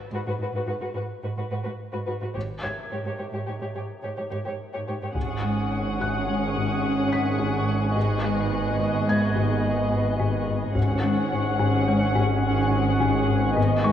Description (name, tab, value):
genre	cinematic, suspense film score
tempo	107 BPM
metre	5/4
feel	straight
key	unclear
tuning	A4 = 440 Hz
part	felt-muted upright piano	texture	0.0-13.9 s	C#6 to B6	-36 LUFS	left 1 dB	none
part	muted studio violin section	second line	0.1-13.9 s	F#4 to C#5	-32 LUFS	left 1 dB	none
part	muted studio cello section	bass	0.1-13.9 s	G#2	-30 LUFS	right 2 dB	none
part	muted studio double bass section	bass	2.3-13.9 s	G#1	-30 LUFS	right 3 dB	none
part	muted studio violin section	melody	5.1-13.9 s	D#5 to F#5	-30 LUFS	left 2 dB	none
part	muted studio violin section	texture	5.1-13.9 s	C#6 to F#6	-35 LUFS	left 2 dB	none
part	muted studio viola section	accompaniment	5.2-13.9 s	B3 to C#4	-28 LUFS	right 2 dB	none
part	folk marimba with medium hard mallets	riff	5.2-13.9 s	G#2 to G#3	-26 LUFS	left 4 dB	none
part	taiko ensemble	drums	5.2-6.2, 10.8-11.8 s	none	-33 LUFS	equal	none
room	wet scoring stage reverb, RT60 1.9 s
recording	worn, warbling old tape, cassette tape, warbly pitch drift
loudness	-22 LUFS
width	side -10 dB against mid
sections	0.0-5.2 A section; 5.2-13.9 B section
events	none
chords	0.0 G#m7; 5.2 F#sus2/G#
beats	0.11 0.67 1.23 1.79 | 2.35 2.91 3.48 4.04 4.60 | 5.16 5.72 6.28 6.84 7.40 | 7.96 8.52 9.08 9.64 10.20 | 10.76 11.32 11.89 12.45 13.01 | 13.57